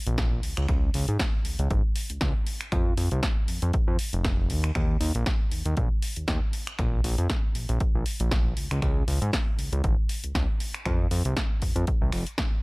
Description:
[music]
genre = nu-disco, nu disco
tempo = 118 BPM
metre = 4/4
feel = swing 56% on 16ths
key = unclear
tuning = A4 = 440 Hz
[part]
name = fat analog bass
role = bass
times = 0.1-12.2 s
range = F1 to Ab2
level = -26 LUFS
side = equal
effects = none
[part]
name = house drum kit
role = drums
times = 0.1-12.5 s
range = finger snaps, hi-hat, snare drum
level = -32 LUFS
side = equal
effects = none
[part]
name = electronic kick drum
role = drums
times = 0.2-12.5 s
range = none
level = -26 LUFS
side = equal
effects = none
[sound]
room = little or no reverb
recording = none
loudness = -24 LUFS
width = side -27 dB against mid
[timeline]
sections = 0.0-12.6 A section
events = none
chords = none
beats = 0.18 | 0.69 1.20 1.71 2.22 | 2.72 3.23 3.74 4.25 | 4.76 5.27 5.78 6.28 | 6.79 7.30 7.81 8.32 | 8.83 9.33 9.84 10.35 | 10.86 11.37 11.88 12.38

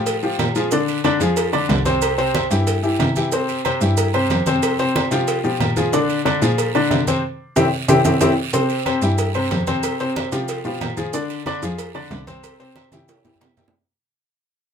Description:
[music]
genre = latin, salsa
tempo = 184 BPM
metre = 4/4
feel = straight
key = C major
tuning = A4 = 440 Hz
[part]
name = clear upright piano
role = accompaniment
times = 0.0-13.7 s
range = C3 to D5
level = -20 LUFS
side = left 2 dB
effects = none
[part]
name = rich cello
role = bass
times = 0.0-13.7 s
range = C2 to C3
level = -23 LUFS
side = equal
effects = none
[part]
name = agogo bells and timbales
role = percussion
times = 0.1-13.6 s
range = none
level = -28 LUFS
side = right 7 dB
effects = none
[part]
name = congas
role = percussion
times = 0.1-13.8 s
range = none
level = -26 LUFS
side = equal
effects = none
[part]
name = cowbell and bongos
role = percussion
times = 0.1-13.7 s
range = none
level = -27 LUFS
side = right 2 dB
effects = none
[part]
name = guiro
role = percussion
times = 0.1-13.7 s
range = none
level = -32 LUFS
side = right 8 dB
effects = none
[part]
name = maracas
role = percussion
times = 0.1-13.7 s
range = none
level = -32 LUFS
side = right 8 dB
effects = none
[sound]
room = moderate studio ambience, RT60 0.5 s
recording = minimal, uncompressed stereo recording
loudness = -17 LUFS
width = side -7 dB against mid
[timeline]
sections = 0.0-8.5 A section; 8.5-13.7 B section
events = band accent 7.2-8.5; drum fill 7.6-8.5, 12.9-13.7; fade-out 8.5-13.7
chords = 0.0 Fadd9; 0.7 Bb7; 2.0 C; 4.6 Fsus2; 5.9 Bb7; 7.2 C; 9.8 Fsus2; 11.1 Fm6; 12.4 C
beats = 0.06 0.39 | 0.71 1.04 1.37 1.69 | 2.02 2.35 2.67 3.00 | 3.33 3.65 3.98 4.30 | 4.63 4.96 5.28 5.61 | 5.93 6.26 6.58 6.91 | 7.23 7.56 7.88 8.21 | 8.54 8.86 9.19 9.51 | 9.84 10.16 10.49 10.81 | 11.14 11.46 11.79 12.11 | 12.44 12.76 13.09 13.41

